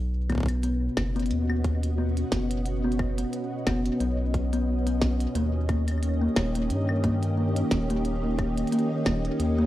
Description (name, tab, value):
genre	IDM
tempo	89 BPM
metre	4/4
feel	swing 56% on 16ths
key	B major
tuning	A4 = 439 Hz
part	soft string machine	sustained chords	0.5-9.7 s	B2 to D#5	-30 LUFS	right 1 dB	ensemble chorus
part	round analog bass	bass	0.0-9.7 s	D#1 to G2	-27 LUFS	equal	none
part	kalimba	arpeggios	0.3-9.7 s	A#3 to B3	-30 LUFS	left 2 dB	low-pass filter, tape echo
part	electronic kick drum	drums	0.3-9.2 s	none	-28 LUFS	equal	studio reverb
part	glitchy drum kit	drums	0.3-9.5 s	claves, hi-hat, snare drum	-32 LUFS	equal	studio reverb
room	digital ambience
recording	rough home demo mix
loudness	-24 LUFS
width	side -14 dB against mid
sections	0.0-9.7 A section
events	none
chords	0.0 Badd9; 5.4 D#7